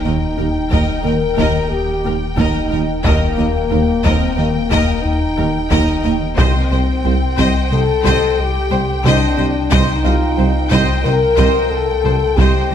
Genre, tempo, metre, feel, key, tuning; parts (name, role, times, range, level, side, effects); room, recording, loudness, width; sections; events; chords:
cinematic, hybrid orchestral and electronic film score; 90 BPM; 5/4; straight; A4 = 439 Hz
warm symphonic violin section; melody; 0.0-12.7 s; G5; -27 LUFS; left 4 dB
rich symphonic violin section; second line; 0.0-12.7 s; Bb4 to Eb5; -25 LUFS; left 2 dB
rich symphonic viola section; accompaniment; 0.0-12.7 s; Bb4 to C5; -26 LUFS; equal
dark French horn section; sustained chords; 0.0-12.7 s; Bb3 to Bb4; -19 LUFS; left 3 dB
tight sequenced synth; arpeggios; 0.0-12.7 s; C3 to Eb4; -29 LUFS; left 1 dB
mellow tuba; bass; 0.0-12.7 s; C2 to Eb2; -24 LUFS; right 4 dB
rich symphonic cello section; bass; 0.0-12.7 s; C2 to Eb2; -23 LUFS; right 3 dB
rich symphonic double bass section; bass; 0.0-12.7 s; C2 to Eb2; -23 LUFS; right 3 dB
sub bass with octave; bass; 0.0-12.7 s; Eb1 to C2; -23 LUFS; equal
felt-muted upright piano; texture; 0.0-12.7 s; F4 to G5; -31 LUFS; left 2 dB
smooth synth bass; riff; 0.1-12.7 s; C2 to Eb3; -23 LUFS; left 2 dB
solo taiko drums; drums; 0.7-12.7 s; -22 LUFS; equal
moderate scoring stage reverb, RT60 2.0 s; -13 LUFS; side -9 dB against mid
0.0-12.7 A section
0.0 Eb; 6.4 Cm